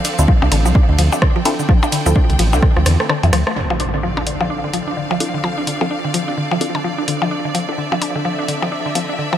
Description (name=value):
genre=minimal techno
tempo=128 BPM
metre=4/4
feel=swing 60% on 16ths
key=D minor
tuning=A4 = 441 Hz
part: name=mallet-like synth pluck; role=riff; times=0.0-9.4 s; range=D3 to D4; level=-20 LUFS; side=equal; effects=chorus, phaser, cassette tape, sidechain pumping, tape echo
part: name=punchy analog drum machine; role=drums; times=0.0-9.1 s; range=hi-hat, ride cymbal, rim click, shaker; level=-22 LUFS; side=equal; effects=dub echo
part: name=clear symphonic string section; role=texture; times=0.0-9.4 s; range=C4 to G5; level=-26 LUFS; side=equal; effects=sidechain pumping
part: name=filtered dub chord stab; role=stabs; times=0.2-9.0 s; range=C4 to A4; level=-26 LUFS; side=equal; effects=phaser, vintage 12-bit sampler grit, dub echo
part: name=round analog bass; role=bass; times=0.2-3.4 s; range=A1 to F2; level=-14 LUFS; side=equal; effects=sidechain pumping
part: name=electronic kick drum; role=drums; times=0.3-2.7 s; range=none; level=-13 LUFS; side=equal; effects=none
part: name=percussion blips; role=percussion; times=0.4-9.4 s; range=none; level=-25 LUFS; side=left 5 dB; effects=tape echo
part: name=impact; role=sound effects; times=3.6-5.4 s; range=none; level=-26 LUFS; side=equal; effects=none
part: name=swarming drone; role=texture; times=4.5-9.4 s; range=D4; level=-32 LUFS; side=equal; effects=none
room=light reverb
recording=echo-heavy mix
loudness=-15 LUFS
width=side -10 dB against mid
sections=0.0-3.6 A section; 3.6-9.4 B section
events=drop 0.0-3.6; drum fill 2.6-3.6; kick drops out 3.1-3.6; band accent 3.4; impact 3.6-5.4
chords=0.0 Dm7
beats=0.28 0.75 1.22 | 1.69 2.16 2.63 3.09 | 3.56 4.03 4.50 4.97 | 5.44 5.91 6.38 6.84 | 7.31 7.78 8.25 8.72 | 9.19